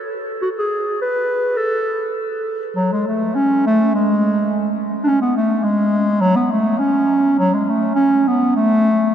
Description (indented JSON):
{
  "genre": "alpine folk",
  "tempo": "103 BPM",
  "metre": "2/4",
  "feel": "straight",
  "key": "A major",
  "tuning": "A4 = 440 Hz",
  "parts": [
    { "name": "dark clarinet", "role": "solo", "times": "0.0-9.1 s", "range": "F#3 to B4", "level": "-15 LUFS", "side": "equal", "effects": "none" }
  ],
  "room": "wet huge ambient reverb, RT60 7.7 s",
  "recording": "in a vast, echoing space",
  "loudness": "-15 LUFS",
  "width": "side -9 dB against mid",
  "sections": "0.0-2.8 A section; 2.8-9.1 A section",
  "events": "none",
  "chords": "none",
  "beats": "| 0.43 1.00 | 1.58 2.17 | 2.75 3.33 | 3.91 4.50 | 5.08 5.65 | 6.23 6.81 | 7.39 7.98 | 8.56 9.14"
}